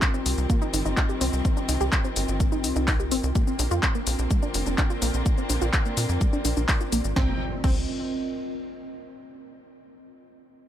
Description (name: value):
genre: melodic techno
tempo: 126 BPM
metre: 4/4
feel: straight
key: C minor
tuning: A4 = 444 Hz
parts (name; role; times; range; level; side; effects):
- rich studio string section; sustained chords; 0.0-7.4 s; C3 to G5; -36 LUFS; left 1 dB; sidechain pumping
- electronic kick drum; drums; 0.0-7.7 s; none; -24 LUFS; equal; none
- punchy analog drum machine; drums; 0.0-7.7 s; crash cymbal, handclaps, hi-hat, shaker, snare drum; -29 LUFS; left 2 dB; sidechain pumping on perc, sidechain pumping on hats, sidechain pumping on cymbals
- warbly tape-like pad; texture; 0.0-9.0 s; C4 to Eb5; -33 LUFS; equal; chorus, built-in reverb, sidechain pumping
- wide unison pluck; arpeggios; 0.1-7.9 s; Ab3 to G4; -31 LUFS; right 1 dB; sidechain pumping, tape echo
- tight sequencer bass; bass; 0.3-7.9 s; F1 to Bb2; -27 LUFS; equal; sidechain pumping
- impact; sound effects; 7.2-9.1 s; none; -35 LUFS; equal; none
room: little or no reverb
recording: none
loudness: -22 LUFS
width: side -11 dB against mid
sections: 0.0-7.2 A section; 7.2-9.1 B section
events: none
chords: 0.0 Cm; 3.4 Bbadd9; 7.2 Cm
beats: 0.02 0.50 0.97 | 1.45 1.93 2.40 2.88 | 3.35 3.83 4.31 4.78 | 5.26 5.74 6.21 6.69 | 7.16 7.64 8.12 8.59